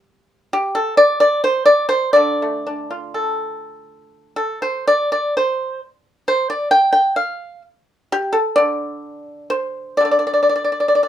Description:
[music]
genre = chinese traditional, Chinese solo plucked strings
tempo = 64 BPM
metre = 2/4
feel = rubato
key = D yu mode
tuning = A4 = 440 Hz
[part]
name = pipa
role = solo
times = 0.0-11.1 s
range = D3 to G5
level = -15 LUFS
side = equal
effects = none
[sound]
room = light reverb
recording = band playing live in one room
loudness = -15 LUFS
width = side -11 dB against mid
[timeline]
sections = 0.0-11.1 A section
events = none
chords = none

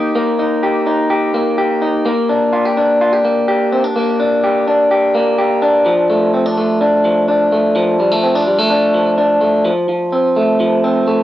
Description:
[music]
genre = indie pop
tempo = 126 BPM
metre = 4/4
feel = straight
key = unclear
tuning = A4 = 440 Hz
[part]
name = electric guitar through a small old amp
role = solo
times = 0.0-11.2 s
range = F3 to G4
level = -12 LUFS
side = equal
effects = cassette tape
[sound]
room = moderate studio reverb, RT60 0.6 s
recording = home recording on cassette, nothing above 7.7 kHz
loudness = -12 LUFS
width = side -13 dB against mid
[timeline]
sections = 0.0-9.7 A section; 9.7-11.2 B section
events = none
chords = 0.0 Eb; 2.1 Gm; 5.9 Dm/F; 9.7 F

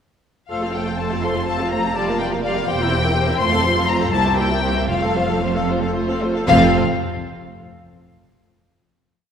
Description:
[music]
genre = quick classical-period movement for string orchestra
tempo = 74-85 BPM (dotted quarters)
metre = 6/8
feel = rubato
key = F major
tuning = A4 = 441 Hz
[part]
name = warm symphonic violin section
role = melody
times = 0.5-6.8 s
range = F5 to C6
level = -21 LUFS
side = left 5 dB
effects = none
[part]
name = warm symphonic violin section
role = second line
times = 0.5-6.8 s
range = F4 to F5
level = -26 LUFS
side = left 1 dB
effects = none
[part]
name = rich symphonic viola section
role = accompaniment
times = 0.5-6.8 s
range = G3 to A4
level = -23 LUFS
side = right 1 dB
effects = none
[part]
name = rich studio cello section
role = bass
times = 0.5-6.8 s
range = C2 to F2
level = -25 LUFS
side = right 3 dB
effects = none
[part]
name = rich studio double bass section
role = bass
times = 0.5-6.8 s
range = E1 to C2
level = -24 LUFS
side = right 2 dB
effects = none
[sound]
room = wet scoring stage reverb, RT60 1.9 s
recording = recorded in a church or concert hall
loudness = -16 LUFS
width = side -8 dB against mid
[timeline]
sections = 0.5-6.5 A section; 6.5-8.0 final chord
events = slowing down 2.7-6.5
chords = 0.5 F; 2.0 Gm7/F; 2.7 C7/E; 3.4 F; 4.1 C7; 4.9 F; 6.5 F5

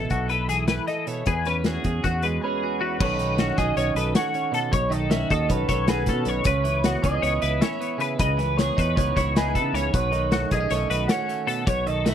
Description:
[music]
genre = math rock and midwest emo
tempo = 311 BPM (eighths)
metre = 9/8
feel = straight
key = unclear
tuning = A4 = 439 Hz
[part]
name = twelve-string electric guitar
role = accompaniment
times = 0.0-12.1 s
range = E2 to B4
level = -29 LUFS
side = right 6 dB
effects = none
[part]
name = twelve-string electric guitar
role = arpeggios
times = 0.0-12.1 s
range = F#4 to D#5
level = -28 LUFS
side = left 7 dB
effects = ensemble chorus
[part]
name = fingered electric bass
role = bass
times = 0.0-12.1 s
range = B1 to C#3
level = -27 LUFS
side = equal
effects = none
[part]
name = loose indie drum kit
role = drums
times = 0.1-12.1 s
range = crash cymbal, hi-hat, kick drum, snare drum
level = -26 LUFS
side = left 1 dB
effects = none
[part]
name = electric guitar through a small old amp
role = melody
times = 2.4-12.1 s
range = B4 to F#5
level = -27 LUFS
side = right 2 dB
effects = slapback echo
[sound]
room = little or no reverb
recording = none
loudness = -21 LUFS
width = side -9 dB against mid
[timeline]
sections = 0.0-3.0 A section; 3.0-12.1 B section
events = none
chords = 0.0 B7sus4; 1.3 E69; 3.0 B9; 6.5 C#m9; 9.9 B9

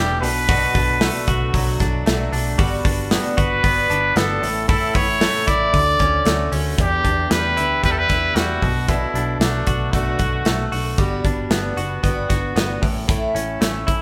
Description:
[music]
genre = jangly indie pop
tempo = 114 BPM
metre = 4/4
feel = straight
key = unclear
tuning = A4 = 439 Hz
[part]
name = clear trumpet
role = melody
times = 0.0-10.7 s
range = D4 to D5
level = -22 LUFS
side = equal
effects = none
[part]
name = picked twelve-string acoustic guitar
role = accompaniment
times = 0.0-14.0 s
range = A2 to G4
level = -31 LUFS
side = equal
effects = none
[part]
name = direct-recorded clean electric guitar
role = arpeggios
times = 0.0-14.0 s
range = E2 to F#4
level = -27 LUFS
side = equal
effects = none
[part]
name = vintage muted fingered electric bass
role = bass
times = 0.0-14.0 s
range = E1 to E2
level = -28 LUFS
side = equal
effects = none
[part]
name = modern studio drum kit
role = drums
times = 0.2-14.0 s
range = hi-hat, kick drum, snare drum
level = -23 LUFS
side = equal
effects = none
[sound]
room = moderate stone room reverb, RT60 0.9 s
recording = band playing live in one room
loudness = -19 LUFS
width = mono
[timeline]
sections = 0.0-6.8 A section; 6.8-14.0 B section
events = none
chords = 0.2 Bm7; 2.6 Gmaj7; 4.4 A; 5.7 Dmaj7; 6.8 Em7; 8.6 Bm7; 11.0 Gmaj7; 12.8 A

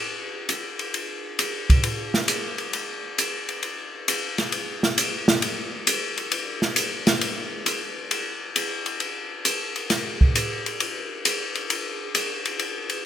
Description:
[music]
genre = jazz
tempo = 134 BPM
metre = 4/4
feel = swing 68% on 8ths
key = none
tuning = none
[part]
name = open jazz drum kit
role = drums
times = 0.5-13.0 s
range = hi-hat, kick drum, ride cymbal, snare drum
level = -22 LUFS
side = equal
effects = none
[sound]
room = light reverb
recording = rough home demo mix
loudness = -22 LUFS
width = side -10 dB against mid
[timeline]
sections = 0.0-13.1 A section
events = none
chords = none

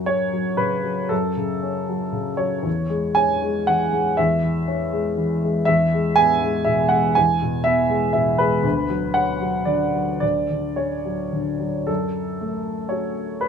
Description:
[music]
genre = neoclassical minimalist piano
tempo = 106-125 BPM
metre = 3/4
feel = rubato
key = F# minor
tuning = A4 = 440 Hz
[part]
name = warm baby grand piano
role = solo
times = 0.0-13.5 s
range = D2 to G#5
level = -19 LUFS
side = equal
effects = none
[sound]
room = moderate small room reverb, RT60 0.5 s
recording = minimal, uncompressed stereo recording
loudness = -19 LUFS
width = side -7 dB against mid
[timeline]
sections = 0.0-11.9 A section; 11.9-13.5 B section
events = none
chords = 0.0 F#m; 2.7 C#m/E; 5.7 E; 8.6 Bmadd9/D; 11.9 F#m

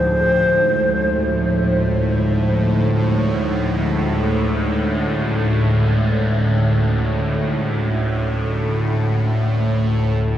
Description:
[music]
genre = dark ambient drone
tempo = free time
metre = none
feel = none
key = unclear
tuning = A4 = 440 Hz
[part]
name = breathy mellow long shakuhachi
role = melody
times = 0.0-1.8 s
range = C5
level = -20 LUFS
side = equal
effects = tape echo
[part]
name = deep dark ambient pad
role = sustained chords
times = 0.0-10.4 s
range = F3 to C#5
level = -24 LUFS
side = equal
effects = chorus, built-in reverb
[part]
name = bowed-like drone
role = drone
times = 0.0-10.4 s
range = D2 to A2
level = -18 LUFS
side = equal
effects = built-in reverb, phaser
[part]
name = bronze singing bowl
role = texture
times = 0.0-10.4 s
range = Ab3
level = -34 LUFS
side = equal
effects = none
[sound]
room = wet cathedral reverb, RT60 5.7 s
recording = worn, warbling old tape, cassette tape, warbly pitch drift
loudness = -16 LUFS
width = side -11 dB against mid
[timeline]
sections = 0.0-10.4 A section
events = fade-out on ambient pad 0.0-10.4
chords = 0.0 Fm; 3.8 A

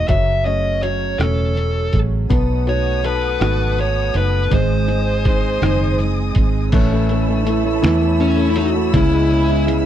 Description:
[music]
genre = six-eight pop ballad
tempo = 54 BPM (dotted quarters)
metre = 6/8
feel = straight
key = unclear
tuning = A4 = 440 Hz
[part]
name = dark smooth lead guitar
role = melody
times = 0.0-9.6 s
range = C#4 to E5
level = -21 LUFS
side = left 2 dB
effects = overdrive
[part]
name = clear baby grand piano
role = accompaniment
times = 0.0-9.9 s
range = C#3 to A4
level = -23 LUFS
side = left 9 dB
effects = none
[part]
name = picked steel-string acoustic guitar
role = arpeggios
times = 0.0-9.9 s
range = F#2 to B4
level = -26 LUFS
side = right 10 dB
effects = none
[part]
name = vintage muted fingered electric bass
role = bass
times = 0.0-9.9 s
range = E1 to E2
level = -19 LUFS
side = equal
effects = none
[part]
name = lo-fi sampler-style drum kit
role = drums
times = 0.1-9.9 s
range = crash cymbal, hi-hat, kick drum, rim click, snare drum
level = -19 LUFS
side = equal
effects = none
[part]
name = muted studio string section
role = sustained chords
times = 2.3-9.9 s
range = G#4 to E6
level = -29 LUFS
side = equal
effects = none
[part]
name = mellow French horn section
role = second line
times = 6.7-9.9 s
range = C#4 to F#4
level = -21 LUFS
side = right 8 dB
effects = none
[sound]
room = small room reverb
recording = dry, close 1970s-style studio recording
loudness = -15 LUFS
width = side -10 dB against mid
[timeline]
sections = 0.0-6.7 A section; 6.7-9.9 B section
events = none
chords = 0.1 F#madd9; 2.3 B7; 4.5 G#; 6.7 Aadd9; 8.9 C#m7

